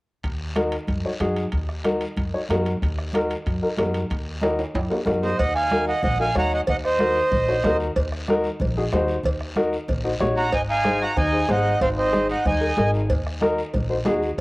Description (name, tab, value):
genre	latin, cumbia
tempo	187 BPM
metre	4/4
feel	straight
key	Eb dorian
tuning	A4 = 436 Hz
part	upright bass	bass	0.2-14.4 s	Ab1 to Gb2	-27 LUFS	equal	none
part	bombo	percussion	0.2-14.4 s	none	-30 LUFS	equal	none
part	guiro	percussion	0.2-14.4 s	none	-41 LUFS	left 2 dB	none
part	timbales and cowbell	percussion	0.2-14.2 s	none	-30 LUFS	right 2 dB	none
part	warm upright piano	accompaniment	0.6-14.3 s	Eb4 to Eb5	-24 LUFS	left 1 dB	cassette tape
part	congas	percussion	0.6-14.2 s	none	-30 LUFS	equal	none
part	accordion	melody	5.2-7.8, 10.4-12.9 s	C5 to Bb5	-22 LUFS	right 1 dB	cassette tape
part	growling trumpet	second line	10.4-12.9 s	C4 to Gb4	-32 LUFS	right 1 dB	cassette tape, analog delay
room	moderate spring reverb, RT60 2.0 s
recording	home recording on cassette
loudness	-20 LUFS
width	side -21 dB against mid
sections	0.2-5.4 A section; 5.4-14.4 B section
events	drum fill 4.4-5.4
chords	0.2 Ebm; 10.5 Ab; 13.1 Ebm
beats	| 0.24 0.56 0.88 1.21 | 1.53 1.85 2.17 2.50 | 2.82 3.14 3.46 3.78 | 4.11 4.43 4.75 5.07 | 5.39 5.71 6.04 6.36 | 6.68 7.00 7.32 7.64 | 7.96 8.28 8.61 8.93 | 9.25 9.57 9.89 10.21 | 10.53 10.85 11.17 11.49 | 11.81 12.13 12.46 12.78 | 13.10 13.42 13.74 14.06 | 14.38